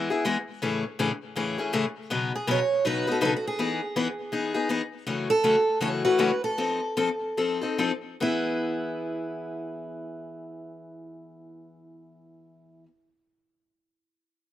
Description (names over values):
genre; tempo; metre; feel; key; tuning
jazz; 139-162 BPM; 4/4; swing 61% on 8ths; E major; A4 = 440 Hz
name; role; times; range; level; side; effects
picked steel-string acoustic guitar; accompaniment; 0.0-12.9 s; F#2 to B4; -26 LUFS; left 4 dB; slapback echo
picked steel-string acoustic guitar; melody; 2.4-12.8 s; E4 to C#5; -28 LUFS; right 3 dB; slapback echo
room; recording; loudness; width
light reverb; recorded outdoors, with no room sound; -24 LUFS; side -12 dB against mid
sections
0.0-5.1 A section; 5.1-8.2 B section; 8.2-11.7 C section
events
slowing down 5.1-8.2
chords
0.0 E; 0.6 Amaj7; 2.1 Badd9; 3.6 Emaj7; 5.1 F#m7; 6.6 F7; 8.2 E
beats
0.25 | 0.62 0.99 1.36 1.73 | 2.10 2.48 2.85 3.22 | 3.59 3.96 4.33 4.70 | 5.07 5.44 5.81 6.19 | 6.57 6.96 7.36 7.78 | 8.20 8.63 9.07 9.50 | 9.93 10.37 10.80 11.23